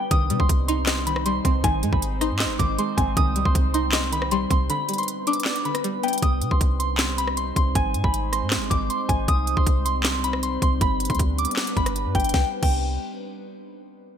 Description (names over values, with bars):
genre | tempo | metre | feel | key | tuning
hip hop, trap | 157 BPM | 4/4 | half-time | C harmonic minor | A4 = 439 Hz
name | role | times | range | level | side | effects
soft synth bell | melody | 0.0-12.8 s | G5 to Eb6 | -26 LUFS | equal | chorus, low-pass filter
string-like resonator pluck | accompaniment | 0.0-6.2 s | D3 to Eb5 | -28 LUFS | left 1 dB | chorus, low-pass filter
warbly tape-like pad | sustained chords | 0.0-12.5 s | G3 to C5 | -30 LUFS | equal | chorus, built-in reverb
clean 808-style bass | bass | 0.1-13.0 s | G1 to C3 | -25 LUFS | equal | none
trap drum kit | drums | 0.1-12.7 s | crash cymbal, handclaps, hi-hat, kick drum, rim click, snare drum | -24 LUFS | equal | none
room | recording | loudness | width
light reverb | bright 1980s-style digital production | -20 LUFS | side -8 dB against mid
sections
0.0-6.2 A section; 6.2-12.3 B section; 12.3-13.9 C section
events
break 4.7-6.2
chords
0.1 Cm; 1.6 Ab; 3.2 Cm; 4.7 G; 6.2 Cm; 7.8 Ab; 9.3 Cm; 10.8 G; 12.3 N.C.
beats
| 0.11 0.49 0.88 1.26 | 1.64 2.02 2.40 2.79 | 3.17 3.55 3.93 4.31 | 4.70 5.08 5.46 5.84 | 6.22 6.61 6.99 7.37 | 7.75 8.14 8.52 8.90 | 9.28 9.66 10.05 10.43 | 10.81 11.19 11.57 11.96 | 12.34 12.72